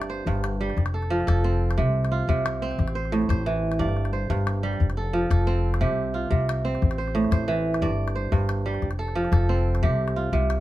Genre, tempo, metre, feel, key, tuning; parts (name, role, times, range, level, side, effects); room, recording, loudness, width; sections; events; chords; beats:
west african traditional, West African string and xylophone music; 119 BPM (dotted quarters); 12/8; straight; A4 = 437 Hz
kora; arpeggios; 0.0-10.6 s; G2 to D5; -25 LUFS; right 2 dB
upright bass; bass; 0.0-10.6 s; F1 to C2; -26 LUFS; equal
calabash; percussion; 0.0-10.6 s; -26 LUFS; left 3 dB
light reverb; dark, warm production; -22 LUFS; side -15 dB against mid
0.0-10.6 A section
0.0 G5; 0.8 F; 1.8 Csus4; 2.8 Am; 3.8 G5; 4.8 F; 5.8 C5; 6.8 Am; 7.8 G5; 8.8 F; 9.8 C5
0.26 0.77 1.27 | 1.78 2.28 2.79 3.29 | 3.79 4.30 4.80 5.30 | 5.81 6.31 6.82 7.32 | 7.82 8.32 8.82 9.33 | 9.83 10.33